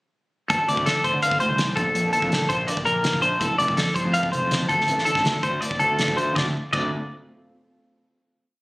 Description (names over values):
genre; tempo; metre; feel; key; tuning
math rock and midwest emo; 164 BPM; 4/4; straight; D minor; A4 = 439 Hz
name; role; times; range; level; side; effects
mellow electric guitar; accompaniment; 0.5-6.9 s; D2 to F4; -31 LUFS; right 2 dB; spring reverb
twelve-string electric guitar; arpeggios; 0.5-6.9 s; A4 to F5; -22 LUFS; left 1 dB; none
fuzz fingered electric bass; bass; 0.5-6.9 s; F1 to D3; -28 LUFS; equal; overdrive
loose indie drum kit; drums; 0.5-6.8 s; crash cymbal, hi-hat, kick drum, snare drum; -27 LUFS; equal; none
room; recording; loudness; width
light reverb; recorded on a phone in the room, studio reverb; -20 LUFS; side -21 dB against mid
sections
0.5-6.4 A section; 6.4-7.8 final chord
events
none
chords
0.5 Dm7; 1.8 Bbmaj7; 3.4 Fmaj7; 4.7 Dm7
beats
| 0.51 0.87 1.23 1.59 | 1.96 2.32 2.68 3.04 | 3.41 3.77 4.14 4.51 | 4.88 5.25 5.62 5.99 | 6.36 6.73